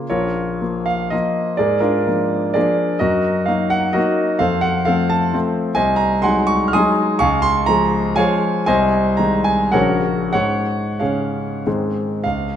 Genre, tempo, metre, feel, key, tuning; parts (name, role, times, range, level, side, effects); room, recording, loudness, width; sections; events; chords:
classical, romantic triple-time dance for piano with dotted rhythms; 88-143 BPM; 3/4; rubato; Db major from 5.8 s; A4 = 441 Hz
clear concert grand piano; solo; 0.0-12.6 s; Bb1 to F6; -16 LUFS; equal
wet recital hall reverb, RT60 1.6 s; -16 LUFS; side -9 dB against mid
0.1-12.3 A section
0.1 Bbm; 1.6 Bb7/Ab; 3.0 Ebm/Gb; 4.4 F; 5.8 Ab7/C; 7.2 Db; 8.7 Ab/C; 9.7 Gb/Bb; 10.3 Db/Ab; 11.7 Ab